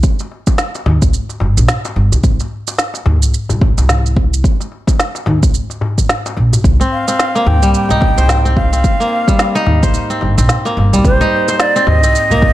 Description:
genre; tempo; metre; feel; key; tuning
organic downtempo; 109 BPM; 4/4; swing 59% on 16ths; C minor; A4 = 440 Hz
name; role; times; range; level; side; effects
electronic kick drum; drums; 0.0-12.5 s; none; -13 LUFS; equal; overdrive, small room reverb
electronic shaker and snare drum; drums; 0.0-12.4 s; none; -18 LUFS; right 1 dB; small room reverb
darbuka; percussion; 0.2-12.5 s; none; -21 LUFS; left 2 dB; none
upright bass; bass; 0.9-12.5 s; G1 to Eb2; -13 LUFS; equal; sidechain pumping
kora; arpeggios; 6.8-12.5 s; G3 to C5; -16 LUFS; equal; ping-pong delay
breathy bright ney; melody; 6.9-12.5 s; C5 to G5; -16 LUFS; right 1 dB; tape echo
room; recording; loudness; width
little or no reverb; dark, warm production; -11 LUFS; side -15 dB against mid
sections
0.0-12.5 A section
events
none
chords
0.0 Cm

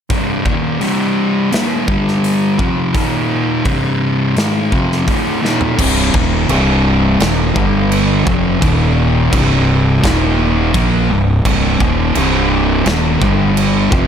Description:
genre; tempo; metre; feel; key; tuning
stoner and doom metal; 85 BPM; 4/4; straight; C minor; A4 = 445 Hz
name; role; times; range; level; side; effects
fuzz guitar; riff; 0.1-14.1 s; C2 to Bb3; -14 LUFS; equal; distortion
big rock drum kit; drums; 0.1-14.1 s; crash cymbal, hi-hat, kick drum, snare drum, toms; -18 LUFS; equal; none
fuzz fingered electric bass; bass; 5.8-14.1 s; C1 to Bb1; -17 LUFS; equal; overdrive
room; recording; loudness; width
small room ambience; none; -12 LUFS; side -8 dB against mid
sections
0.1-5.8 A section; 5.8-14.1 B section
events
drum fill 5.4-5.8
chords
0.1 Cm; 1.9 G5; 2.6 F5; 2.9 Eb5; 3.7 Cm; 7.6 G5; 8.3 F5; 8.6 Eb5; 9.3 C5; 10.0 Eb5; 10.7 Cm; 13.2 G5

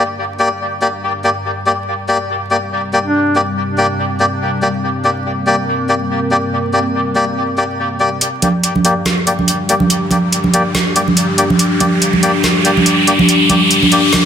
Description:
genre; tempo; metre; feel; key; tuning
deep dubstep; 142 BPM; 4/4; swing 56% on 16ths, half-time; G minor; A4 = 438 Hz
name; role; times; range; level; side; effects
dark analog pad; sustained chords; 0.0-14.3 s; G3 to Bb4; -19 LUFS; left 2 dB; chorus, phaser
melodica; stabs; 0.0-14.0 s; Bb3 to D5; -16 LUFS; left 1 dB; low-pass filter, dub echo
warm duduk; melody; 3.0-3.4 s; D4; -20 LUFS; equal; dub echo
garage drum kit; drums; 8.2-14.2 s; hi-hat, snare drum; -16 LUFS; right 1 dB; high-pass filter on hats, high-pass filter on snare, high-pass filter on room
riser; sound effects; 10.1-14.3 s; none; -17 LUFS; equal; none
congas; percussion; 8.4-14.2 s; none; -15 LUFS; right 3 dB; dub echo
room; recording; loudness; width
moderate lush hall reverb, RT60 1.8 s, small room ambience; dense, heavily limited modern master, vinyl crackle; -12 LUFS; side -8 dB against mid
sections
0.0-8.2 A section; 8.2-14.3 B section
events
filter sweep on analog synth pad 0.0-8.2; build-up 8.2-14.3; riser 10.1-14.3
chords
0.0 Gm

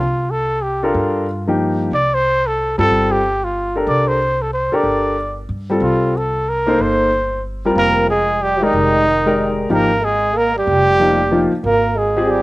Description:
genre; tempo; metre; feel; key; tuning
modal jazz; 185 BPM; 3/4; swing 64% on 8ths; C dorian, F dorian from 7.8 s; A4 = 440 Hz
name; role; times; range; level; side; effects
breathy trumpet; melody; 0.0-12.4 s; Eb4 to D5; -17 LUFS; equal; none
warm concert grand piano; accompaniment; 0.0-12.4 s; F3 to D5; -18 LUFS; left 1 dB; none
upright bass; bass; 0.0-12.4 s; F1 to G2; -23 LUFS; equal; none
warm trombone; second line; 7.8-12.4 s; Eb3 to Bb3; -20 LUFS; right 3 dB; none
room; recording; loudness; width
little or no reverb; recorded outdoors, with no room sound; -14 LUFS; side -19 dB against mid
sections
0.0-7.8 A section; 7.8-12.4 B section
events
none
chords
0.0 C13sus4; 7.8 Fm11

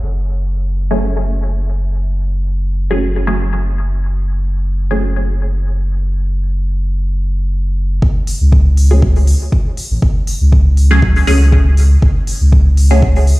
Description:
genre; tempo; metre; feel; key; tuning
dub techno; 120 BPM; 4/4; swing 54% on 16ths; F# minor; A4 = 441 Hz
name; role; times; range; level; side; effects
soft dub sub bass; bass; 0.0-13.3 s; F#1 to C#2; -13 LUFS; equal; sidechain pumping
filtered dub chord stab; stabs; 0.9-13.4 s; F#3 to G#4; -19 LUFS; right 1 dB; phaser, sidechain pumping, dub echo
electronic kick drum; drums; 8.0-13.1 s; none; -12 LUFS; equal; studio ambience
electronic hi-hat; drums; 8.3-13.4 s; none; -27 LUFS; left 1 dB; studio ambience
room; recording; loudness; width
digital ambience; played on a big sound system in a bare room, stone room reverb, low-pass filter; -12 LUFS; side -20 dB against mid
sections
0.0-8.0 A section; 8.0-13.4 B section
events
none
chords
0.0 F#madd9

